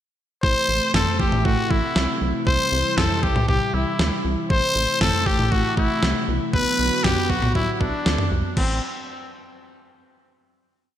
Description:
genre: synth-pop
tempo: 118 BPM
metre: 4/4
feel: straight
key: A dorian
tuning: A4 = 441 Hz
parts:
  - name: growling trumpet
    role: melody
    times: 0.4-8.8 s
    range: C4 to C5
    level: -23 LUFS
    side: left 2 dB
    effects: digital delay
  - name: chorused pulse-width pad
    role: sustained chords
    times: 0.4-8.5 s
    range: C3 to F#4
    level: -27 LUFS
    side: right 1 dB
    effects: none
  - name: rubbery square bass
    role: bass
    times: 0.4-8.8 s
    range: A1 to D2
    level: -25 LUFS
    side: right 1 dB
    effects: none
  - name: clean 12-bit digital drum machine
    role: drums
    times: 0.4-8.7 s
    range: crash cymbal, kick drum, snare drum, toms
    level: -23 LUFS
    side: equal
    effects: gated reverb
room: moderate lush hall reverb, RT60 2.5 s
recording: bright 1980s-style digital production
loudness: -18 LUFS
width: side -10 dB against mid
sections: 0.4-8.6 verse; 8.6-10.6 final chord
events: none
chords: 0.4 Am; 2.5 C; 4.5 Am; 6.5 Bm; 8.6 N.C.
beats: | 0.43 0.94 1.45 1.96 | 2.47 2.98 3.48 3.99 | 4.50 5.01 5.52 6.03 | 6.54 7.04 7.55 8.06 | 8.57

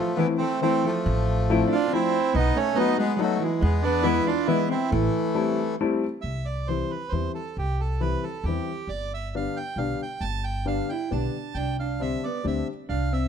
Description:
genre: musette waltz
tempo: 136 BPM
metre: 3/4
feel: straight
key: A minor, C major from 6.2 s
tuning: A4 = 440 Hz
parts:
  - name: bandoneon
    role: melody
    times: 0.0-13.3 s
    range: E3 to A5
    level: -27 LUFS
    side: right 1 dB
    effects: none
  - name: hollow-body jazz guitar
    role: second line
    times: 0.0-5.7, 10.7-13.3 s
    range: E3 to E4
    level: -29 LUFS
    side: right 5 dB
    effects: none
  - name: warm upright piano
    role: accompaniment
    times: 0.2-12.7 s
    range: D3 to E4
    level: -27 LUFS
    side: left 6 dB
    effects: none
  - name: upright bass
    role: bass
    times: 1.1-13.3 s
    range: G1 to E2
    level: -27 LUFS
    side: equal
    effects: none
room: light reverb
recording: close, detailed microphones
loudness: -23 LUFS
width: side -7 dB against mid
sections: 0.0-6.2 A section; 6.2-13.3 B section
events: none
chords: 0.0 Am; 1.1 Fmaj7/A; 2.3 B7; 3.6 E; 4.9 Am7; 6.2 C; 8.9 G; 11.6 Csus2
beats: 0.19 0.62 | 1.06 1.49 1.92 | 2.35 2.78 3.21 | 3.64 4.06 4.49 | 4.92 5.36 5.80 | 6.24 6.68 7.12 | 7.57 8.01 8.45 | 8.89 9.33 9.78 | 10.22 10.66 11.11 | 11.56 12.01 12.45 | 12.89

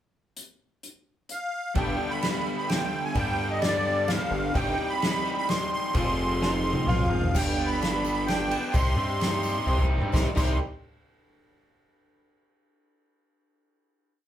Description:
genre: folk rock and heartland rock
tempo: 129 BPM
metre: 3/4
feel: straight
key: C harmonic minor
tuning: A4 = 442 Hz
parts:
  - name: unplugged drum kit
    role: drums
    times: 0.4-10.5 s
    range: crash cymbal, hi-hat, kick drum, ride cymbal, snare drum, toms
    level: -29 LUFS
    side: equal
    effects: none
  - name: musette accordion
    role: melody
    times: 1.3-10.6 s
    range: D5 to C6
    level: -29 LUFS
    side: right 1 dB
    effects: none
  - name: raw garage guitar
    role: riff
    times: 1.7-10.6 s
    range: G2 to Ab4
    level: -31 LUFS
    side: equal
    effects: overdrive
  - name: picked swing-style acoustic guitar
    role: accompaniment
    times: 1.8-10.6 s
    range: G2 to Ab4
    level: -38 LUFS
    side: left 5 dB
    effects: none
  - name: gritty driven synth bass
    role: bass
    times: 1.8-10.6 s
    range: F1 to G2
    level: -28 LUFS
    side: equal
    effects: distortion
  - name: warm concert grand piano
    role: accompaniment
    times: 4.5-10.6 s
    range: G4 to C6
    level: -42 LUFS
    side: right 2 dB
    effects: none
  - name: electric slide guitar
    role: second line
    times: 6.4-7.2, 10.1-10.6 s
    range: Eb4 to F4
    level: -33 LUFS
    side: right 4 dB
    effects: none
  - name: tambourine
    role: percussion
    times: 7.3-10.6 s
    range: none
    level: -46 LUFS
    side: right 4 dB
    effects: none
room: moderate studio reverb, RT60 0.5 s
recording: band playing live in one room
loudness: -24 LUFS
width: side -11 dB against mid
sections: 0.4-1.8 pickup bar; 1.8-7.3 pre-chorus; 7.3-10.1 outro; 10.1-11.5 final chord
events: drum fill 6.4-7.3, 9.7-10.1; grand piano fill 9.4-10.1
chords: 0.4 N.C.; 1.8 G; 4.5 Cm/G; 5.9 Fm; 7.3 G; 8.7 Cm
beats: | 0.37 0.83 1.29 | 1.76 2.22 2.69 | 3.15 3.62 4.08 | 4.55 5.01 5.48 | 5.95 6.41 6.88 | 7.35 7.81 8.28 | 8.74 9.21 9.68 | 10.14

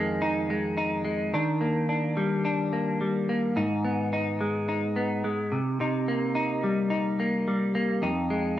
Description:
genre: indie pop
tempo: 108 BPM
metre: 4/4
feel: swing 60% on 16ths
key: Eb major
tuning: A4 = 441 Hz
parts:
  - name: semi-hollow electric guitar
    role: solo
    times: 0.0-8.6 s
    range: F2 to Eb4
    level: -25 LUFS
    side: equal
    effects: wide subtle chorus, vibrato effect, cassette tape
room: light reverb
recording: home recording on cassette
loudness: -25 LUFS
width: side -12 dB against mid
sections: 0.0-1.3 A section; 1.3-8.6 B section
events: none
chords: 0.0 Fm7; 1.3 Ebmaj7; 3.6 Abm; 5.5 Cm7; 8.0 Fm7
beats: 0.23 0.79 | 1.34 1.90 2.46 3.01 | 3.57 4.13 4.68 5.24 | 5.80 6.36 6.91 7.47 | 8.03 8.58

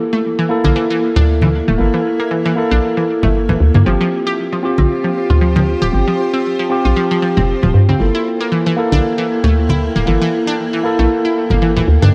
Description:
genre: deep house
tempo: 116 BPM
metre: 4/4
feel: swing 56% on 16ths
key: G dorian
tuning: A4 = 444 Hz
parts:
  - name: tine electric piano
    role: stabs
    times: 0.0-12.1 s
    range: Bb3 to A4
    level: -20 LUFS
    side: equal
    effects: analog delay
  - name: granular cloud pad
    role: texture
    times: 0.8-12.1 s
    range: Bb3 to G5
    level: -26 LUFS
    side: equal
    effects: built-in reverb
  - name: analog pluck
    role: arpeggios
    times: 0.1-12.1 s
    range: E3 to G4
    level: -22 LUFS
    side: equal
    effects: chorus, analog delay
  - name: hollow knocking FM bass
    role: bass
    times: 0.6-12.1 s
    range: D1 to G2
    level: -16 LUFS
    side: equal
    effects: none
  - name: congas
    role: percussion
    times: 0.6-12.1 s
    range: none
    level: -20 LUFS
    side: equal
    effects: none
room: light reverb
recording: cassette tape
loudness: -15 LUFS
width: mono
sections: 0.0-12.1 A section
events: none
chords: 0.0 Gm69; 3.9 Fsus2; 8.0 Gm69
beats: 0.24 0.76 1.27 | 1.79 2.31 2.83 3.34 | 3.86 4.38 4.90 5.41 | 5.93 6.45 6.96 7.48 | 8.00 8.52 9.03 9.55 | 10.07 10.59 11.10 11.62 | 12.14

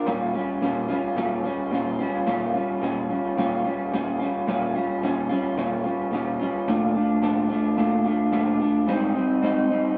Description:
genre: indie pop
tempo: 109 BPM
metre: 4/4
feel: swing 60% on 16ths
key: unclear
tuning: A4 = 441 Hz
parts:
  - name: electric guitar through a small old amp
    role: solo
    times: 0.0-10.0 s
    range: Ab2 to F4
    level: -24 LUFS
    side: equal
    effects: subtle chorus, vibrato effect
room: moderate spring reverb, RT60 2.0 s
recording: worn, warbling old tape, cassette tape, warbly pitch drift, studio reverb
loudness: -24 LUFS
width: mono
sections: 0.0-4.5 A section; 4.5-6.7 B section; 6.7-10.0 C section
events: none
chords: 0.1 Bbm6; 6.7 Bbmaj7; 8.9 Abmaj7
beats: | 0.07 0.62 1.17 1.72 | 2.27 2.82 3.37 3.92 | 4.47 5.02 5.57 6.12 | 6.67 7.22 7.77 8.32 | 8.88 9.43 9.98

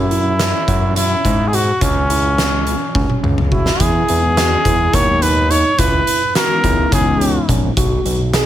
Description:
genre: progressive instrumental, band music in an uneven meter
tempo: 212 BPM (eighths)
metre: 7/8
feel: straight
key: unclear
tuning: A4 = 444 Hz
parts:
  - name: clear trumpet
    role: melody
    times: 0.0-7.5 s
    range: C#4 to C#5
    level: -17 LUFS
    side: equal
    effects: none
  - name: overdriven tine electric piano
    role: arpeggios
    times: 0.0-8.5 s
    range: C#4 to G#4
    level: -23 LUFS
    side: right 4 dB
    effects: none
  - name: fat analog bass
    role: bass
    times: 0.0-8.5 s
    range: A#1 to G#2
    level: -18 LUFS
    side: equal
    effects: none
  - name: oversized low-tuned drum kit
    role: drums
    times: 0.1-8.5 s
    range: hi-hat, kick drum, snare drum, toms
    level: -18 LUFS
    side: equal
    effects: none
  - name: dark analog pad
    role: accompaniment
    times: 4.1-8.5 s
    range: D#3 to D#4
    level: -24 LUFS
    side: left 6 dB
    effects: chorus
room: light reverb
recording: none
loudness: -13 LUFS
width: side -12 dB against mid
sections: 0.0-3.8 A section; 3.8-8.5 B section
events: drum fill 2.9-3.8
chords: 0.0 F#5; 1.8 N.C.; 3.8 Emaj7; 5.8 C#m7; 7.8 B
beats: 0.11 0.39 0.68 0.96 1.24 1.53 | 1.81 2.09 2.38 2.66 2.95 3.23 3.51 | 3.80 4.08 4.36 4.65 4.93 5.21 5.50 | 5.78 6.07 6.35 6.63 6.92 7.20 7.48 | 7.77 8.05 8.34

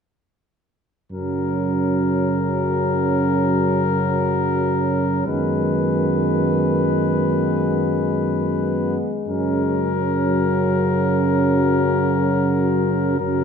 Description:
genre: classical, hymn-like piece for brass band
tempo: 57-63 BPM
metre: 4/4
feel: rubato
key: F# major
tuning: A4 = 440 Hz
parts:
  - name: warm cornet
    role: melody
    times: 1.1-13.4 s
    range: A#4 to B4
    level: -25 LUFS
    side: left 9 dB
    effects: none
  - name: dark French horn section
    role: second line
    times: 1.1-13.4 s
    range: B3 to C#4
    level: -25 LUFS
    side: right 7 dB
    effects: none
  - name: dark trombone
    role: accompaniment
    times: 1.1-13.4 s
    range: C#3 to D#3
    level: -25 LUFS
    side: right 2 dB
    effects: none
  - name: warm euphonium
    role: accompaniment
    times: 1.1-13.4 s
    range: F#3 to G#3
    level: -26 LUFS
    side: left 4 dB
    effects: none
  - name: warm tuba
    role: bass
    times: 1.1-13.4 s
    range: F#2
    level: -22 LUFS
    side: equal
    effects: none
room: wet concert hall reverb, RT60 1.9 s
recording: none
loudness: -17 LUFS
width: side -6 dB against mid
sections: 1.1-13.4 A section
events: none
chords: 1.1 F#; 5.3 G#m7/F#; 9.3 F#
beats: | 1.12 2.16 3.19 4.23 | 5.27 6.27 7.27 8.28 | 9.29 10.26 11.26 12.23 | 13.20

